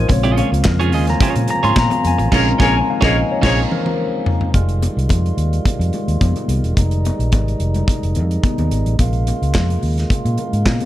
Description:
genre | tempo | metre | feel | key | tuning
disco | 108 BPM | 4/4 | straight | F minor | A4 = 441 Hz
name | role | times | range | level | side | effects
mellow tine electric piano | accompaniment | 0.0-4.6 s | Db3 to C6 | -19 LUFS | left 3 dB | phaser
percussive tonewheel organ | sustained chords | 0.0-10.9 s | Db3 to F4 | -25 LUFS | right 2 dB | overdrive, wide subtle chorus
fingered electric bass | bass | 0.0-10.8 s | E1 to Bb2 | -18 LUFS | equal | none
clean electric guitar | accompaniment | 0.1-3.6 s | Db4 to Eb5 | -23 LUFS | right 6 dB | none
modern studio drum kit | drums | 0.1-10.9 s | crash cymbal, handclaps, hi-hat, kick drum, snare drum, toms | -19 LUFS | equal | none
congas | percussion | 0.1-10.9 s | none | -28 LUFS | left 5 dB | none
warm horn section | stabs | 2.3-3.6 s | Ab4 to Db5 | -21 LUFS | left 1 dB | none
room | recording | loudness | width
studio reverb | none | -14 LUFS | side -14 dB against mid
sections
0.0-4.5 A section; 4.5-10.9 B section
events
tine electric piano solo 0.0-4.5; band accent 2.3-4.5; drum fill 3.4-4.5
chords
0.1 Bbm7; 4.5 Fm9; 9.0 Bbm7

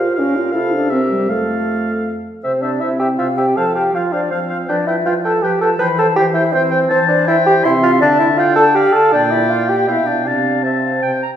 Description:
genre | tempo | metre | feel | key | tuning
quick classical-period movement for wind quintet | 161 BPM | 3/4 | straight | C major, F major from 6.9 s | A4 = 440 Hz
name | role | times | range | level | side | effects
mellow hollow silver concert flute | melody | 0.0-11.2 s | G4 to B5 | -22 LUFS | left 5 dB | none
warm oboe | second line | 0.0-11.2 s | E5 to C6 | -20 LUFS | left 2 dB | none
mellow French horn | accompaniment | 0.0-11.1 s | Bb2 to F4 | -20 LUFS | equal | none
mellow clarinet | accompaniment | 0.0-11.3 s | G4 to Bb5 | -24 LUFS | right 3 dB | none
mellow bassoon | bass | 0.0-11.2 s | F2 to B4 | -17 LUFS | right 1 dB | none
room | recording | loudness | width
wet recital hall reverb, RT60 1.5 s | recorded in a church or concert hall | -13 LUFS | side -9 dB against mid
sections
0.0-2.4 A section; 2.4-11.4 B section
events
none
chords
0.2 Gm7b5/Bb; 0.5 F/C; 0.9 C7; 1.3 F; 2.4 C; 3.6 F; 4.7 G7/F; 5.8 C/E; 8.0 Dm; 9.1 Gm/Bb; 9.9 G7/B; 10.3 F/C

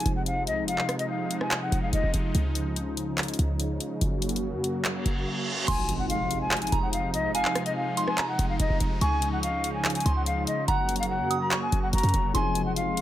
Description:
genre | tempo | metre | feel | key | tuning
hip hop, trap | 144 BPM | 4/4 | half-time | F phrygian | A4 = 445 Hz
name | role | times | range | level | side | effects
breathy jazz flute | melody | 0.0-2.1, 5.7-13.0 s | Eb5 to Bb5 | -30 LUFS | left 2 dB | low-pass filter
sweeping resonant pad | sustained chords | 0.0-13.0 s | C3 to Gb4 | -31 LUFS | equal | chorus
trap drum kit | drums | 0.0-13.0 s | crash cymbal, handclaps, hi-hat, rim click | -30 LUFS | left 1 dB | none
short 808-style bass | bass | 0.1-13.0 s | F1 to Gb2 | -28 LUFS | equal | none
reverse cymbal and impact | sound effects | 5.0-7.3 s | none | -34 LUFS | right 1 dB | none
soft synth bell | second line | 5.7-13.0 s | Ab5 to Eb6 | -33 LUFS | right 4 dB | chorus, ping-pong delay
dark concert grand piano | accompaniment | 12.3-13.0 s | F3 to Ab4 | -30 LUFS | left 6 dB | low-pass filter
room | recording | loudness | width
little or no reverb | none | -24 LUFS | side -13 dB against mid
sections
0.0-5.7 A section; 5.7-13.0 B section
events
reverse cymbal 5.0-5.7; impact 5.7-7.3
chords
0.0 Fm7; 2.3 Dbadd9; 4.0 Gb; 5.7 Fm7; 9.0 Dbadd9; 10.7 Gb; 12.3 Fm7

